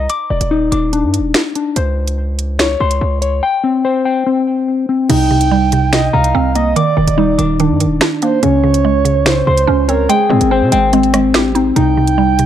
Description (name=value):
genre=hip hop, drill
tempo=144 BPM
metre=4/4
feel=half-time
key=C minor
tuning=A4 = 440 Hz
part: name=mellow electric guitar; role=arpeggios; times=0.0-12.5 s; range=C4 to D6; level=-15 LUFS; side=left 4 dB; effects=tape echo
part: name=hard-hitting 808-style bass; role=bass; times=0.0-12.5 s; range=Eb1 to C3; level=-17 LUFS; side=equal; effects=none
part: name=drill drum kit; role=drums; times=0.1-12.5 s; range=crash cymbal, finger snaps, hi-hat, rim click, snare drum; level=-18 LUFS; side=right 1 dB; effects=none
part: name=breathy flute-like synth lead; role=second line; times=5.1-12.5 s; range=Ab4 to G5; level=-18 LUFS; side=right 6 dB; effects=chorus, tape echo
part: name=mallet-like synth pluck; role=accompaniment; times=5.1-12.5 s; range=C3 to G4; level=-16 LUFS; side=right 6 dB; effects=chorus
room=little or no reverb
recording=dark, warm production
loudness=-11 LUFS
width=side -10 dB against mid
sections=0.0-5.1 A section; 5.1-12.5 B section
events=none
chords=0.1 Ebmaj7(no3); 1.8 N.C.; 3.4 C5; 5.1 Cm7; 6.8 Ebmaj7; 8.4 Db5; 10.1 Abmaj7; 11.8 Cm